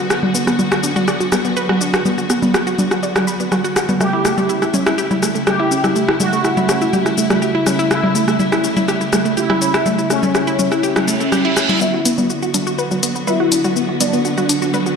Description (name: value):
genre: melodic techno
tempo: 123 BPM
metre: 4/4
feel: straight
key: B minor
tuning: A4 = 439 Hz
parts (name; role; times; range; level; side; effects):
- dark chamber string section; sustained chords; 0.0-15.0 s; C#3 to F#4; -22 LUFS; equal; low-pass filter
- wide unison pluck; arpeggios; 0.0-14.9 s; A3 to B5; -19 LUFS; right 1 dB; auto-pan, digital delay
- punchy analog drum machine; drums; 0.1-15.0 s; congas, hi-hat, rim click, shaker; -18 LUFS; left 1 dB; high-pass filter on snare, high-pass filter on hats, high-pass filter on cymbals, high-pass filter on perc
- resonant sweep polysynth; melody; 4.0-15.0 s; C#4 to G4; -21 LUFS; equal; chorus, digital delay
- reverse cymbal and riser; sound effects; 11.0-15.0 s; none; -25 LUFS; right 3 dB; none
- glassy wavetable pluck; second line; 11.8-15.0 s; D5 to E5; -28 LUFS; right 1 dB; chorus, digital delay
room: moderate lush hall reverb, RT60 2.0 s, digital ambience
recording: played on a big sound system in a bare room, large studio reverb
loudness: -14 LUFS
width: side -6 dB against mid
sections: 0.0-11.8 A section; 11.8-15.0 B section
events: filter sweep on string section 0.0-11.8; reverse cymbal 11.0-11.8; build-up 11.8-15.0; filter sweep on analog polysynth 11.8-15.0; filter sweep on synth pluck 11.8-15.0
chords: 0.0 Bm; 4.0 A7; 11.8 Bm